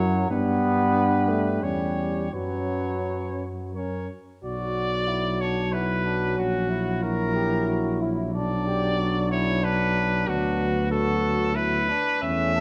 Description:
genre	classical, brass quintet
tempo	83-95 BPM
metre	3/4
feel	rubato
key	B minor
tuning	A4 = 439 Hz
part	clear trumpet	melody	0.0-12.6 s	F#4 to E5	-30 LUFS	equal	none
part	mellow flugelhorn	second line	0.0-12.6 s	C#4 to B4	-35 LUFS	equal	none
part	warm French horn	accompaniment	0.0-12.6 s	B3 to F#4	-34 LUFS	equal	none
part	warm trombone	accompaniment	0.0-12.6 s	F#3 to B3	-30 LUFS	equal	none
part	mellow tuba	bass	0.0-12.6 s	A#1 to G2	-30 LUFS	equal	none
room	moderate scoring stage reverb, RT60 2.0 s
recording	none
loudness	-25 LUFS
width	mono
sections	0.0-4.4 A section; 4.4-12.6 B section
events	none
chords	0.3 G; 1.6 C#dim/E; 2.3 F#sus4; 4.4 Bm; 6.4 F#7/A#; 8.3 Bm; 10.3 Bm/D

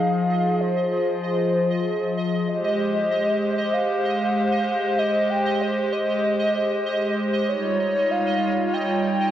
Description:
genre	IDM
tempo	free time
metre	none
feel	none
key	unclear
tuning	A4 = 445 Hz
part	warbly nostalgic lead	melody	0.0-9.3 s	C5 to G5	-24 LUFS	equal	chorus, tape echo
part	hollow soft pad	sustained chords	0.0-9.3 s	F3 to Db5	-23 LUFS	equal	chorus, vintage 12-bit sampler grit
part	pulsing gated texture	texture	0.0-9.3 s	Eb5	-31 LUFS	right 2 dB	chorus, built-in reverb
room	moderate lush hall reverb, RT60 2.9 s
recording	worn, warbling old tape, cassette tape, warbly pitch drift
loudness	-20 LUFS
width	side -11 dB against mid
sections	0.0-9.3 A section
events	none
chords	0.0 Fm7; 2.5 Abmaj7; 7.5 Eb9

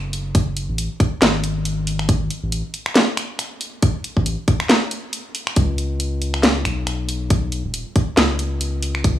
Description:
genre	deep dubstep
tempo	138 BPM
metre	4/4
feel	swing 56% on 16ths, half-time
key	unclear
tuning	A4 = 439 Hz
part	soft dub sub bass	bass	0.0-9.2 s	D#1 to C#2	-22 LUFS	left 1 dB	none
part	garage drum kit	drums	0.1-9.1 s	finger snaps, handclaps, hi-hat, snare drum	-20 LUFS	equal	none
part	electronic kick drum	drums	0.3-9.1 s	none	-17 LUFS	equal	none
room	digital ambience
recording	dry, gritty hardware recording, transformer saturation, studio ambience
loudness	-18 LUFS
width	side -12 dB against mid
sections	0.0-9.2 A section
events	none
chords	none

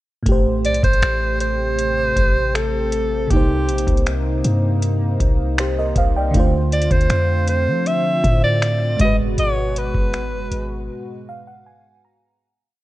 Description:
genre	contemporary R&B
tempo	79 BPM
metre	4/4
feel	straight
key	unclear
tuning	A4 = 442 Hz
part	FM electric piano with soft pad layer	accompaniment	0.2-12.4 s	G#2 to Bb5	-24 LUFS	right 1 dB	chorus
part	chorused pulse-width pad	sustained chords	0.3-12.4 s	B2 to G4	-28 LUFS	left 1 dB	none
part	warm 808-style bass	bass	0.3-10.9 s	F#1 to F3	-21 LUFS	equal	none
part	booming analog drum machine	drums	0.3-10.7 s	finger snaps, hi-hat, kick drum	-19 LUFS	equal	none
part	breathy alto saxophone	melody	0.7-10.9 s	G4 to E5	-21 LUFS	equal	ping-pong delay
room	digital ambience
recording	worn, warbling old tape, cassette tape, warbly pitch drift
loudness	-16 LUFS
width	side -16 dB against mid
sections	0.3-12.4 verse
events	fade-out 9.4-12.4; break 10.9-12.4; FM electric piano fill 10.9-12.4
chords	0.3 Am7; 3.3 Cm7; 6.3 Dm7; 9.0 G#m7

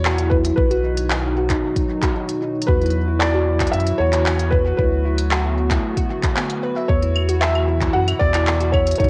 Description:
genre	IDM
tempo	114 BPM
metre	4/4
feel	straight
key	unclear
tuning	A4 = 439 Hz
part	felt-muted upright piano	melody	0.0-9.1 s	B4 to F#5	-25 LUFS	equal	cassette tape, analog delay
part	hollow soft pad	sustained chords	0.0-9.1 s	B2 to F#4	-30 LUFS	equal	chorus, cassette tape
part	round analog bass	bass	0.0-9.1 s	B1 to F#2	-23 LUFS	equal	none
part	harp-like synth pluck	arpeggios	0.1-9.1 s	B3 to E5	-27 LUFS	equal	chorus, cassette tape, analog delay
part	organic electronic drum kit	drums	0.1-9.1 s	claves, handclaps, hi-hat	-27 LUFS	equal	cassette tape
part	electronic kick drum	drums	0.3-9.1 s	none	-23 LUFS	equal	cassette tape
room	moderate small room reverb, RT60 0.5 s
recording	home recording on cassette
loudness	-19 LUFS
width	mono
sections	0.0-9.1 A section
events	none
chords	0.0 Esus2; 0.6 B; 2.7 Esus2; 4.8 D6; 6.9 Esus2

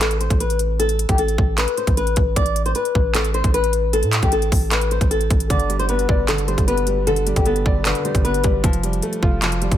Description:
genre	hip hop, trap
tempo	153 BPM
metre	4/4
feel	half-time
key	A minor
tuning	A4 = 437 Hz
part	flamenco guitar	melody	0.0-8.4 s	G4 to D5	-22 LUFS	left 3 dB	ping-pong delay
part	long sustained 808-style bass	bass	0.0-9.8 s	F1 to A2	-22 LUFS	equal	none
part	trap drum kit	drums	0.0-9.8 s	handclaps, hi-hat, kick drum	-20 LUFS	equal	none
part	warm grand piano	accompaniment	5.5-9.8 s	D3 to D5	-25 LUFS	right 1 dB	none
room	digital ambience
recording	none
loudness	-16 LUFS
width	side -11 dB against mid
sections	0.0-9.8 A section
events	none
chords	0.0 Asus2; 5.5 G; 8.6 Fadd9

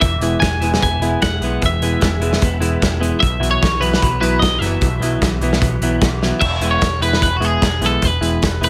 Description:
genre	indie rock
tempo	150 BPM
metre	4/4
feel	straight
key	E major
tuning	A4 = 440 Hz
part	twelve-string electric guitar	melody	0.0-8.7 s	F#4 to G#5	-22 LUFS	equal	none
part	overdriven electric guitar	riff	0.0-8.7 s	E3 to E4	-23 LUFS	equal	none
part	raw garage guitar	riff	0.0-6.4 s	B2 to E4	-28 LUFS	equal	overdrive, ensemble chorus, analog delay
part	overdriven picked electric bass	bass	0.0-8.7 s	E1 to B1	-23 LUFS	equal	none
part	loose indie drum kit	drums	0.0-8.7 s	crash cymbal, hi-hat, kick drum, snare drum	-22 LUFS	equal	none
room	little or no reverb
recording	none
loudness	-17 LUFS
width	mono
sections	0.0-6.4 A section; 6.4-8.7 A section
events	drum fill 6.2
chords	0.0 E; 3.2 Bsus4; 6.4 E

